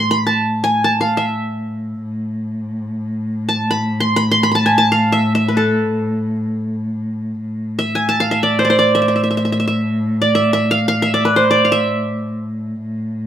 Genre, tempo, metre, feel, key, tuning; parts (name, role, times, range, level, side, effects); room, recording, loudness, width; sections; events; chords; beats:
Arabic maqam ensemble; free time; A maqam nahawand; A4 = 438 Hz
qanun; melody; 0.0-13.2 s; A4 to C6; -15 LUFS; right 1 dB
dark cello; drone; 0.0-13.3 s; A2; -20 LUFS; equal
moderate studio ambience, RT60 0.5 s; minimal, uncompressed stereo recording; -15 LUFS; side -10 dB against mid
0.0-7.4 A section; 7.4-13.3 A section
free time